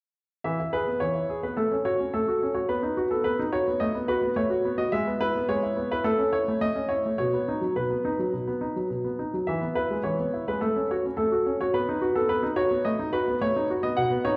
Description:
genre	classical-period piano sonatina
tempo	107 BPM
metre	4/4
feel	straight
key	unclear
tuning	A4 = 440 Hz
part	clear baby grand piano	solo	0.4-14.4 s	B2 to F#5	-26 LUFS	equal	none
room	wet recital hall reverb, RT60 1.8 s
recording	heard from further back in the room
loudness	-26 LUFS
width	mono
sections	0.4-14.4 A section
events	none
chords	0.4 E; 1.6 F#m/A; 2.7 B; 3.8 B5/A; 4.9 E/G#; 6.1 A; 7.2 B; 9.5 E; 10.6 F#m/A; 11.7 B; 12.9 B7/A

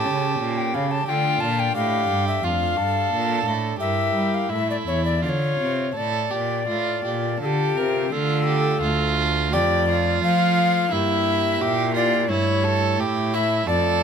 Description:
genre	classical, baroque-style sonata movement with continuo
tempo	85 BPM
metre	4/4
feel	uneven beats, rubato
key	D minor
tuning	A4 = 440 Hz
part	alto recorder	melody	0.0-14.0 s	G4 to A5	-24 LUFS	left 6 dB	none
part	warm violin	second line	0.0-14.0 s	E4 to Bb4	-25 LUFS	right 7 dB	none
part	pipe organ, sparkling flutes	accompaniment	0.0-14.0 s	D2 to Bb4	-28 LUFS	right 2 dB	none
part	rich cello	bass	0.0-14.0 s	D2 to G3	-25 LUFS	right 2 dB	none
room	moderate stone room reverb, RT60 1.3 s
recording	close, detailed microphones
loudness	-19 LUFS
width	side -7 dB against mid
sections	0.0-8.1 A section; 8.1-14.0 B section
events	none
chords	0.0 A7; 1.1 Dm; 2.4 Dm/F; 3.8 Edim/G; 4.5 A5; 5.2 Dm; 9.5 Dm/F; 10.9 Edim/G; 12.3 A7/G

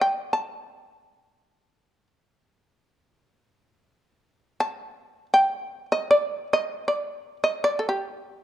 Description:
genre	japanese traditional, Japanese chamber music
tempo	free time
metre	none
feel	none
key	unclear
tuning	A4 = 440 Hz
part	shamisen	solo	0.0-8.4 s	G4 to A5	-22 LUFS	equal	none
room	light reverb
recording	dark, warm production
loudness	-22 LUFS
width	side -12 dB against mid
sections	0.0-8.4 A section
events	none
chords	none

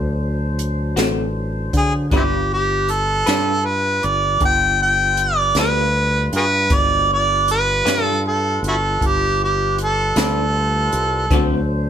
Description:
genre	slow blues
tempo	52 BPM (dotted quarters)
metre	12/8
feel	straight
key	unclear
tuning	A4 = 436 Hz
part	tonewheel organ	sustained chords	0.0-11.9 s	F#3 to C5	-29 LUFS	left 1 dB	slow rotary speaker
part	fingered electric bass	bass	0.0-11.9 s	G1 to D3	-22 LUFS	equal	none
part	jazz brush drum kit	drums	0.6-11.5 s	hi-hat, kick drum, snare drum	-21 LUFS	equal	none
part	electric guitar through a small old amp	accompaniment	1.0-11.5 s	D3 to B4	-22 LUFS	left 2 dB	tremolo
part	warm harmonica	melody	1.8-11.7 s	C4 to G5	-18 LUFS	right 1 dB	overdrive, plate reverb
room	light reverb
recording	none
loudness	-16 LUFS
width	side -9 dB against mid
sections	0.0-11.9 A section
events	none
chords	0.0 D7; 2.1 G7; 11.3 D7

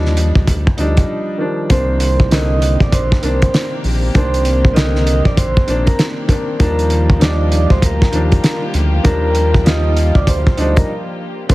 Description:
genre	hip hop, boom-bap hip-hop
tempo	98 BPM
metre	4/4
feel	swing 62% on 16ths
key	C minor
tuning	A4 = 440 Hz
part	warm upright piano	accompaniment	0.0-11.5 s	D3 to F4	-20 LUFS	equal	high-pass filter, low-pass filter
part	round analog bass	bass	0.0-11.5 s	Bb1 to Eb2	-16 LUFS	equal	none
part	cloth-damped thuddy drum kit	drums	0.1-11.5 s	hi-hat, kick drum, snare drum	-15 LUFS	equal	none
part	vibraphone with medium hard mallets	melody	1.7-11.5 s	Bb4 to Eb6	-21 LUFS	right 2 dB	high-pass filter, low-pass filter, digital delay
part	warm chamber string section	sustained chords	1.7-11.5 s	C3 to G4	-28 LUFS	left 2 dB	high-pass filter, low-pass filter
room	small room ambience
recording	heavily compressed radio sound, multiband compression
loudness	-12 LUFS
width	side -19 dB against mid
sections	0.0-1.7 A section; 1.7-11.5 B section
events	break 1.1-1.7, 10.9-11.5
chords	0.0 Ebmaj9; 1.7 Cm9; 6.6 Ebmaj9

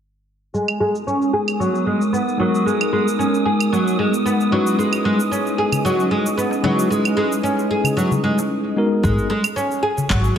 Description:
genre	organic downtempo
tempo	113 BPM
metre	4/4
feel	straight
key	G# minor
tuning	A4 = 440 Hz
part	ethereal airy pad	sustained chords	1.0-8.5 s	G#3 to D#5	-24 LUFS	right 1 dB	ensemble chorus, built-in reverb, sidechain pumping
part	oud	arpeggios	0.5-10.4 s	F#3 to G#4	-20 LUFS	equal	low-pass filter, tape echo
part	electronic cabasa, claves and handclaps	drums	0.5-10.3 s	none	-26 LUFS	right 4 dB	overdrive, low-pass filter on perc, low-pass filter on snare
part	wind-like tuned noise texture	texture	1.3-8.5 s	D#6	-30 LUFS	right 3 dB	built-in reverb
part	tine electric piano	accompaniment	2.4-9.3 s	G#3 to B4	-22 LUFS	left 2 dB	fast stereo tremolo, sidechain pumping, low-pass filter, tape echo
part	darbuka	percussion	5.0-10.4 s	none	-27 LUFS	left 2 dB	none
part	upright bass	bass	9.0-10.3 s	G#1	-18 LUFS	equal	sidechain pumping
part	electronic kick drum	drums	9.0-10.2 s	none	-24 LUFS	equal	overdrive
room	wet echo chamber reverb, RT60 1.8 s, studio reverb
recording	none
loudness	-17 LUFS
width	side -8 dB against mid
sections	0.5-9.0 A section; 9.0-10.4 B section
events	filter sweep on oud 0.5-9.0; filter sweep on tine electric piano 0.5-9.0; filter sweep on ambient pad 0.5-9.0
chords	0.5 G#m7

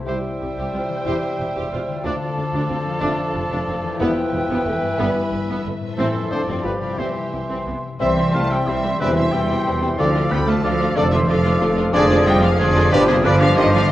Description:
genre	classical, dramatic, fast romantic movement for symphony orchestra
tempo	182 BPM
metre	3/4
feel	rubato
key	C major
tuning	A4 = 440 Hz
part	dark French horn section	sustained chords	0.0-13.0 s	G3 to C5	-27 LUFS	left 3 dB	none
part	concert harp	arpeggios	0.0-13.9 s	E2 to C6	-27 LUFS	left 5 dB	none
part	warm symphonic violin section	melody	0.1-13.9 s	B4 to B5	-28 LUFS	left 2 dB	none
part	clear clarinet	second line	0.1-13.9 s	G4 to C5	-30 LUFS	left 1 dB	none
part	silver concert flute	second line	0.1-13.9 s	G5 to D6	-30 LUFS	equal	none
part	warm oboe	second line	0.1-13.9 s	G4 to G5	-28 LUFS	right 1 dB	none
part	warm symphonic violin section	second line	0.1-13.8 s	E4 to C5	-32 LUFS	left 1 dB	none
part	clear bassoon	accompaniment	0.1-13.9 s	E3 to G3	-26 LUFS	right 1 dB	none
part	warm symphonic viola section	accompaniment	0.1-13.8 s	G3 to G4	-28 LUFS	right 1 dB	none
part	clear trumpet	stabs	0.1-13.0 s	B4 to E5	-29 LUFS	right 2 dB	none
part	mellow tuba	bass	0.1-13.9 s	E1 to D2	-28 LUFS	right 2 dB	none
part	rich symphonic cello section	bass	0.1-13.9 s	C2 to B3	-25 LUFS	right 1 dB	none
part	rich symphonic double bass section	bass	0.1-13.9 s	E1 to E2	-26 LUFS	right 1 dB	none
part	warm trombone section	sustained chords	8.0-13.9 s	E3 to C4	-31 LUFS	right 2 dB	none
room	wet recital hall reverb, RT60 1.6 s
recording	worn, warbling old tape, cassette tape, warbly pitch drift, nothing above 10.9 kHz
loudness	-17 LUFS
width	side -14 dB against mid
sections	0.1-8.0 A section; 8.0-13.9 A section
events	none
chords	0.1 C; 1.1 C/E; 2.1 Dm; 3.0 Dm/F; 4.0 Em; 5.0 Em/G; 6.0 Am; 6.3 Dm7/F; 6.6 G7; 7.0 C; 9.0 C/E; 10.0 Dm; 11.0 Dm/F; 11.9 Dm7b5/F; 12.9 G7

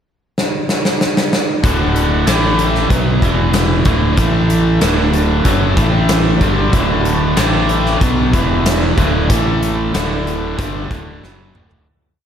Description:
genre	classic rock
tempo	94 BPM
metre	4/4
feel	straight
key	D major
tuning	A4 = 445 Hz
part	big rock drum kit	drums	0.4-11.9 s	hi-hat, kick drum, snare drum, toms	-17 LUFS	equal	none
part	overdriven tonewheel organ	sustained chords	1.6-11.9 s	D4 to A5	-25 LUFS	equal	slow rotary speaker
part	biting overdriven guitar	riff	1.6-11.9 s	D2 to B3	-16 LUFS	equal	slapback echo
part	fuzz fingered electric bass	bass	1.6-11.9 s	D1 to B1	-18 LUFS	equal	overdrive
room	moderate lush hall reverb, RT60 2.8 s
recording	big arena sound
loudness	-12 LUFS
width	side -8 dB against mid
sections	0.0-1.6 pickup bar; 1.6-11.9 riff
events	drum fill 0.4-1.6, 11.2-11.9; fade-out 9.3-11.9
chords	0.0 N.C.; 1.6 D; 2.3 A5; 2.9 B5; 3.2 E5; 3.9 D5; 4.2 A5; 4.8 D; 5.8 A5; 6.4 D; 7.4 A5; 8.0 B5; 8.3 E5; 9.0 D5; 9.3 A5; 9.9 D

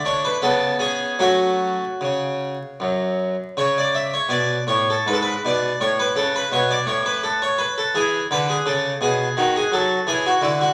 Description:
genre	classical, baroque-style suite movement for harpsichord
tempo	74-86 BPM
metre	3/4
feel	rubato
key	F# minor, A major from 3.6 s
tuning	A4 = 440 Hz
part	harpsichord	solo	0.0-10.7 s	F#2 to E5	-21 LUFS	equal	none
room	wet large studio reverb, RT60 1.3 s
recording	vinyl crackle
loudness	-21 LUFS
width	mono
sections	0.0-3.6 A section; 3.6-10.7 A section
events	none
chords	0.4 C#5; 1.2 F#m; 3.6 A/C#; 5.1 G#dim; 5.8 A; 7.9 E5; 9.4 D#dim; 10.1 E5

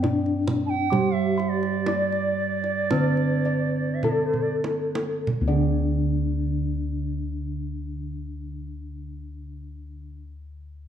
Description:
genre	Javanese gamelan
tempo	46-70 BPM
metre	4/4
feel	straight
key	D slendro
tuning	A4 = 440 Hz
part	gamelan-type bronze metallophone	melody	0.0-10.2 s	D4 to D5	-28 LUFS	left 3 dB	none
part	gamelan-type bronze metallophone	accompaniment	0.0-10.2 s	D3 to C4-45c	-29 LUFS	right 6 dB	none
part	gamelan-type bossed gongs	arpeggios	0.0-10.2 s	D5 to D6	-38 LUFS	left 3 dB	none
part	gamelan-type bossed gongs	bass	0.0-10.2 s	D2 to G4-35c	-29 LUFS	left 1 dB	none
part	kendang	percussion	0.0-5.9 s	none	-31 LUFS	right 2 dB	none
part	bright reedy bansuri	second line	0.7-4.6 s	C5-48c to A5-40c	-29 LUFS	right 8 dB	tape echo
room	moderate recital hall reverb, RT60 1.3 s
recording	dark, warm production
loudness	-22 LUFS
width	side -9 dB against mid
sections	0.0-5.3 A section; 5.3-10.5 B section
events	slowing down 0.0-5.3; drum fill 4.3-5.3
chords	none

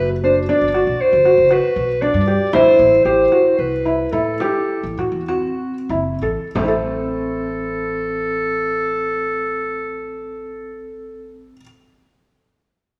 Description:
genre	contemporary instrumental, chamber music in an uneven meter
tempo	89-118 BPM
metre	7/4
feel	straight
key	A dorian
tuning	A4 = 438 Hz
part	mellow clarinet	melody	0.0-11.5 s	A4 to D5	-20 LUFS	equal	none
part	vibraphone with medium mallets	second line	0.0-11.5 s	C4 to F#4	-30 LUFS	equal	none
part	felt-muted upright piano	arpeggios	0.0-11.6 s	A3 to A4	-24 LUFS	equal	none
part	upright bass	bass	0.0-11.5 s	F#1 to A2	-28 LUFS	equal	none
part	frame drum	percussion	1.0-6.9 s	none	-31 LUFS	equal	none
room	wet recital hall reverb, RT60 1.7 s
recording	none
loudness	-18 LUFS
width	mono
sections	0.0-6.6 A section; 6.6-11.3 B section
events	slowing down 2.0-6.6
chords	0.0 Gmaj7; 2.5 Am

